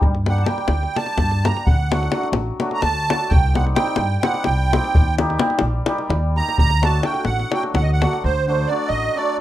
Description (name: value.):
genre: balkan folk, Balkan wedding band.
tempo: 256 BPM (eighths).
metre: 7/8.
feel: straight.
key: D phrygian dominant.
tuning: A4 = 440 Hz.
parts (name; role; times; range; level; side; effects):
hammered dulcimer; accompaniment; 0.0-9.4 s; D3 to G4; -25 LUFS; left 1 dB; none.
upright bass; bass; 0.0-9.1 s; A1 to G2; -20 LUFS; equal; none.
davul; percussion; 0.0-8.2 s; none; -20 LUFS; left 2 dB; none.
musette accordion; melody; 0.3-9.4 s; C5 to Bb5; -22 LUFS; right 4 dB; none.
room: moderate studio reverb, RT60 0.6 s.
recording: rough home demo mix.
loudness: -17 LUFS.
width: side -13 dB against mid.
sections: 0.0-8.2 A section; 8.2-9.4 B section.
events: accordion solo 0.0-8.2.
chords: 0.0 Gm; 1.7 D; 3.3 Cm; 5.0 Eb; 6.6 D.